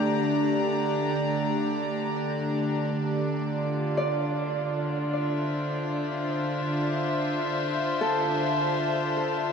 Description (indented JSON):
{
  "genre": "ambient",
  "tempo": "52 BPM",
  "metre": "3/4",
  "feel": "straight",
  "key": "D minor",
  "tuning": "A4 = 441 Hz",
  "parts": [
    { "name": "warm chamber string section", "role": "sustained chords", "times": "0.0-9.5 s", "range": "D3 to Bb5", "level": "-26 LUFS", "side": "equal", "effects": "none" },
    { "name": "Celtic harp", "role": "arpeggios", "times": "0.0-9.5 s", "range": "G4 to D5", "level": "-32 LUFS", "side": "right 1 dB", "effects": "ping-pong delay" },
    { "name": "bowed-like drone", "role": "drone", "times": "0.0-3.0 s", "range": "D3 to A3", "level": "-32 LUFS", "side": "equal", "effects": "built-in reverb" }
  ],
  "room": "wet huge ambient reverb, RT60 7.3 s",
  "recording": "dark, warm production",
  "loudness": "-25 LUFS",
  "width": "side -6 dB against mid",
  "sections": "0.0-2.8 A section; 2.8-9.5 A section",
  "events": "none",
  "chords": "0.0 Gm/D; 2.8 Dm7",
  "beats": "0.53 1.68 | 2.83 3.99 5.14 | 6.29 7.45 8.60"
}